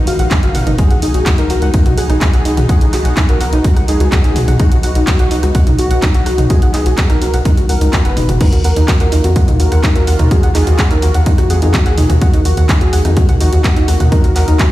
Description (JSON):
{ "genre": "melodic techno", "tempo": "126 BPM", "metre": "4/4", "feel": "straight", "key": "Eb minor", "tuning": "A4 = 440 Hz", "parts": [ { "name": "sweeping resonant pad", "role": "sustained chords", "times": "0.0-14.7 s", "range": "Eb3 to Cb5", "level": "-25 LUFS", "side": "equal", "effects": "chorus, sidechain pumping" }, { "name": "tight sequencer bass", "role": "bass", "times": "0.0-14.6 s", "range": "F#1 to F2", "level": "-14 LUFS", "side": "equal", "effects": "sidechain pumping" }, { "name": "swarming drone", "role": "drone", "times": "0.0-8.5 s", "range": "Eb3 to Eb4", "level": "-30 LUFS", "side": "left 2 dB", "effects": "none" }, { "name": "wide unison lead", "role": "melody", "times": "0.1-14.6 s", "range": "F#4 to F5", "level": "-22 LUFS", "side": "right 1 dB", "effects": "sidechain pumping, ping-pong delay" }, { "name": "soft round pluck", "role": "arpeggios", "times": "0.1-14.7 s", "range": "Eb4 to Gb5", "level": "-20 LUFS", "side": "left 1 dB", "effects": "chorus, sidechain pumping, ping-pong delay" }, { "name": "techno drum kit", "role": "drums", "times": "0.1-14.7 s", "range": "crash cymbal, handclaps, hi-hat, rim click, toms", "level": "-20 LUFS", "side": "right 1 dB", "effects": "none" }, { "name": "electronic kick drum", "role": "drums", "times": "0.3-14.7 s", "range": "none", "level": "-13 LUFS", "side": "equal", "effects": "overdrive" } ], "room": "little or no reverb", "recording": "played on a big sound system in a bare room, stone room reverb", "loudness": "-10 LUFS", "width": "side -16 dB against mid", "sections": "0.0-8.4 A section; 8.4-14.7 A section", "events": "drop 0.0-8.4, 8.4-14.7", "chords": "0.0 Abm7; 0.8 B; 8.4 Ebm" }